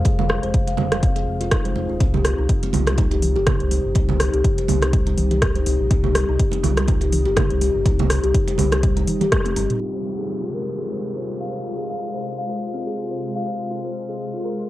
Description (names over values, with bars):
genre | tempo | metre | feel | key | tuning
afro house | 123 BPM | 4/4 | swing 56% on 16ths | F minor | A4 = 441 Hz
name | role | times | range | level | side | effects
ethereal airy pad | sustained chords | 0.0-14.7 s | C3 to F4 | -31 LUFS | left 1 dB | ensemble chorus, built-in reverb, sidechain pumping, cassette tape
round analog bass | bass | 0.0-9.7 s | Eb1 to C2 | -23 LUFS | equal | sidechain pumping
congas | percussion | 0.0-9.7 s | none | -26 LUFS | right 7 dB | none
kalimba | arpeggios | 0.1-14.5 s | G3 to F5 | -25 LUFS | left 2 dB | sidechain pumping, low-pass filter, cassette tape, tape echo
afro-pop drum kit | drums | 0.1-9.8 s | hi-hat, rim click, toms | -24 LUFS | equal | low-pass filter on hats, cassette tape, low-pass filter on cymbals, low-pass filter on snare, low-pass filter on toms
electronic kick drum | drums | 0.1-9.4 s | none | -21 LUFS | equal | cassette tape
tube shaker | percussion | 9.8-14.7 s | none | -69 LUFS | right 8 dB | none
downlifter | sound effects | 9.8-13.7 s | none | -38 LUFS | equal | none
room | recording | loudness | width
light reverb, digital ambience | home recording on cassette, low-pass filter | -18 LUFS | side -15 dB against mid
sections
0.0-9.8 A section; 9.8-14.7 B section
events
filter sweep on kalimba 0.0-9.8, 9.8-14.7; drum fill 9.3-9.8; band accent 9.3; filter sweep 9.8-14.7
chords
0.0 Fm; 2.0 Cm; 9.8 Fm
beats
| 0.05 0.54 1.03 1.51 | 2.00 2.49 2.98 3.47 | 3.95 4.44 4.93 5.42 | 5.91 6.39 6.88 7.37 | 7.86 8.35 8.83 9.32 | 9.81 10.30 10.78 11.27 | 11.76 12.25 12.73 13.22 | 13.71 14.20 14.69